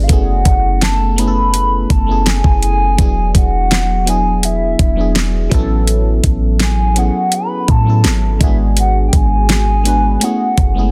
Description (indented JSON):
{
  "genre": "contemporary R&B",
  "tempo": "83 BPM",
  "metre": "4/4",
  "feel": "straight",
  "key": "F# minor",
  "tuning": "A4 = 440 Hz",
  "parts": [
    { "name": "hollow clarinet-like synth lead", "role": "melody", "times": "0.0-10.9 s", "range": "E5 to B5", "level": "-21 LUFS", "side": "equal", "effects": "chorus, delay" },
    { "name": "FM electric piano", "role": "accompaniment", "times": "0.0-10.9 s", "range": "F#3 to B4", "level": "-22 LUFS", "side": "equal", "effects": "chorus, phaser" },
    { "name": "clean 808-style bass", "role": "bass", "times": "0.0-10.9 s", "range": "E1 to A2", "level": "-17 LUFS", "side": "equal", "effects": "none" },
    { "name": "smooth R&B drum kit", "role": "drums", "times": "0.1-10.7 s", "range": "hi-hat, kick drum, snare drum", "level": "-17 LUFS", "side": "equal", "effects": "none" }
  ],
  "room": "digital ambience",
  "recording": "dense, heavily limited modern master",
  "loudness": "-14 LUFS",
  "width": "mono",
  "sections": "0.0-10.9 A section",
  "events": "none",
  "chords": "0.1 F#m11; 3.0 E9; 5.5 A69; 8.4 G#m7b5; 10.2 F#m11"
}